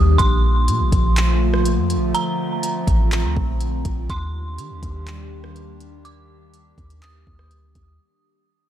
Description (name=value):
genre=hip hop, atmospheric cloud-rap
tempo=123 BPM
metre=4/4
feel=half-time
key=unclear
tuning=A4 = 439 Hz
part: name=dark detuned synth bell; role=melody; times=0.0-8.0 s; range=Bb5 to Eb6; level=-26 LUFS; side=right 2 dB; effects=chorus, digital delay
part: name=warbly tape-like pad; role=sustained chords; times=0.0-8.0 s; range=D3 to G4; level=-25 LUFS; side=equal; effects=chorus, built-in reverb, phaser, sidechain pumping
part: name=soft 808-style bass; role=bass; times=0.0-8.0 s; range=A1 to Eb3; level=-20 LUFS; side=equal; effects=none
part: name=smooth R&B drum kit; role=drums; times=0.2-7.9 s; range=handclaps, hi-hat, kick drum, rim click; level=-23 LUFS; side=equal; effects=none
room=digital ambience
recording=none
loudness=-17 LUFS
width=side -11 dB against mid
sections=0.0-8.0 A section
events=fade-out 0.0-8.0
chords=0.2 Bbmaj7; 4.1 Ebmaj7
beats=| 0.19 0.68 1.17 1.66 | 2.15 2.63 3.12 3.61 | 4.10 4.58 5.07 5.56 | 6.05 6.54 7.02 7.51